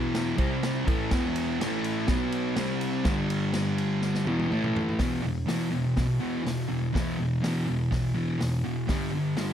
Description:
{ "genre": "garage rock duo or trio", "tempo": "123 BPM", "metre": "4/4", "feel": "straight", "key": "E minor", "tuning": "A4 = 442 Hz", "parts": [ { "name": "thick fuzz guitar", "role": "riff", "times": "0.0-9.5 s", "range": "E2 to C4", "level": "-26 LUFS", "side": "equal", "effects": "distortion" }, { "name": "vintage drum kit", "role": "drums", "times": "0.1-9.5 s", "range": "hi-hat, kick drum, ride cymbal, snare drum, toms", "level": "-31 LUFS", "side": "equal", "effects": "none" } ], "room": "light reverb, studio reverb", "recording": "none", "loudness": "-25 LUFS", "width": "side -9 dB against mid", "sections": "0.0-5.0 A section; 5.0-9.5 B section", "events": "drum fill 4.0-5.0", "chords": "0.4 C5; 0.9 E5; 1.6 A5; 2.1 B5; 2.6 C5; 3.1 G5; 4.3 E5; 4.5 A5; 5.0 E5; 8.9 G5" }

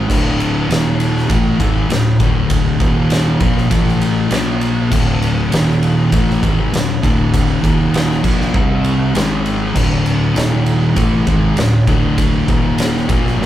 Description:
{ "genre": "stoner and doom metal", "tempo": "99 BPM", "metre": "4/4", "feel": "straight", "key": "unclear", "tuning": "A4 = 444 Hz", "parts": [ { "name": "thick fuzz guitar", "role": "riff", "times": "0.0-13.5 s", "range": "D2 to C4", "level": "-16 LUFS", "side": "left 3 dB", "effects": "distortion" }, { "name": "thick fuzz guitar", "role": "riff", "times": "0.0-13.5 s", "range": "D2 to C4", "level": "-20 LUFS", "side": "right 6 dB", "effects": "distortion" }, { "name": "fuzz fingered electric bass", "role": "bass", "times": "0.0-13.5 s", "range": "D1 to C2", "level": "-23 LUFS", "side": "equal", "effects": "overdrive" }, { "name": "oversized low-tuned drum kit", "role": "drums", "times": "0.1-13.5 s", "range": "crash cymbal, kick drum, ride cymbal, snare drum", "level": "-18 LUFS", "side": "equal", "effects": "none" } ], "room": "moderate large studio reverb, RT60 1.3 s", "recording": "band playing live in one room", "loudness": "-12 LUFS", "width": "side -12 dB against mid", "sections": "0.0-13.5 A section", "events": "none", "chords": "0.1 D5; 0.7 Eb5; 1.3 D5; 2.8 Eb5; 3.4 Bb5; 3.7 A5; 4.3 Bb5; 4.9 D5; 5.5 Eb5; 6.1 D5; 7.6 Eb5; 8.2 Bb5; 8.5 C5; 9.2 G#5; 9.8 D5; 10.4 Eb5; 11.0 D5; 12.5 Eb5; 13.1 Bb5" }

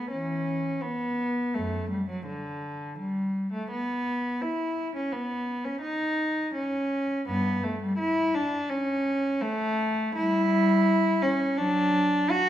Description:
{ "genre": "classical, baroque-style suite movement for unaccompanied cello", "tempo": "84 BPM", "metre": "4/4", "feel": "rubato", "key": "D major", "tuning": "A4 = 437 Hz", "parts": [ { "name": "warm cello", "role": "solo", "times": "0.0-12.5 s", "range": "F#2 to F#4", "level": "-25 LUFS", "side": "equal", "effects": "none" } ], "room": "wet recital hall reverb, RT60 1.5 s", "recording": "minimal, uncompressed stereo recording", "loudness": "-25 LUFS", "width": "side -11 dB against mid", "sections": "0.0-12.5 A section", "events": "none", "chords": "none" }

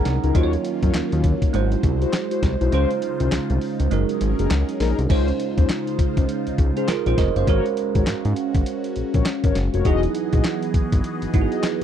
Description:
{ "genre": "R&B, new jack swing", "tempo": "101 BPM", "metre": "4/4", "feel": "swing 61% on 16ths", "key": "unclear", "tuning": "A4 = 440 Hz", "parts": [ { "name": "bell-like tine electric piano", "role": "accompaniment", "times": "0.0-11.8 s", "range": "Gb3 to Bb5", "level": "-26 LUFS", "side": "right 17 dB", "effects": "phaser" }, { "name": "phased analog pad", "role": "sustained chords", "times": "0.0-11.8 s", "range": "Db3 to D#5", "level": "-28 LUFS", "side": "left 2 dB", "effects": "phaser, chorus" }, { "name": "mellow synth brass", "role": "stabs", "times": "0.0-11.8 s", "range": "Db4 to D#5", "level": "-26 LUFS", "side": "left 11 dB", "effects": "chorus" }, { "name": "fat analog bass", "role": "bass", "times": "0.0-11.5 s", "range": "E1 to Ab2", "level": "-22 LUFS", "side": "left 1 dB", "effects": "none" }, { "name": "dusty soul sampler-style drum kit", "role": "drums", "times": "0.1-11.8 s", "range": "crash cymbal, handclaps, hi-hat, kick drum, snare drum", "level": "-22 LUFS", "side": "left 1 dB", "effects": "none" } ], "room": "little or no reverb", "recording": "dry, close 1970s-style studio recording", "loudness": "-18 LUFS", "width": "side -9 dB against mid", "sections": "0.0-5.1 A section; 5.1-11.8 B section", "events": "tine electric piano fill 0.0-0.3; kick muted 2.7-5.1", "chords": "0.3 Ebm9; 1.5 Ab7alt; 2.7 Dbmaj7; 3.9 Gb69; 5.1 Dbmaj7; 7.5 Ab9sus4; 9.9 Emaj9" }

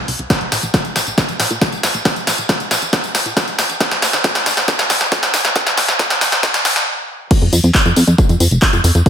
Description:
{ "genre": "uplifting trance", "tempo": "137 BPM", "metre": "4/4", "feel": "straight", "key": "unclear", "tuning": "A4 = 440 Hz", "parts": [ { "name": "plucky analog bass", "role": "bass", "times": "0.0-9.0 s", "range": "Eb1 to Bb2", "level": "-16 LUFS", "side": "equal", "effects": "sidechain pumping" }, { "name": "punchy analog drum machine", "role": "drums", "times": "0.1-9.1 s", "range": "crash cymbal, handclaps, hi-hat, snare drum, tambourine", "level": "-15 LUFS", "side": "equal", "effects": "high-pass filter on hats, high-pass filter on snare, high-pass filter on perc, high-pass filter on cymbals, high-pass filter on room" }, { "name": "electronic kick drum", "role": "drums", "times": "0.3-9.1 s", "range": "none", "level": "-16 LUFS", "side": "equal", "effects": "none" } ], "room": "moderate plate reverb, RT60 1.6 s", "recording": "dreamy mix soaked in reverb, high-pass filter", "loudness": "-13 LUFS", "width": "side -8 dB against mid", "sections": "0.0-7.3 A section; 7.3-9.1 B section", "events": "build-up 0.0-7.3; drum fill 0.0-6.9; stop 6.9-7.3; drop 7.3-9.1", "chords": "none" }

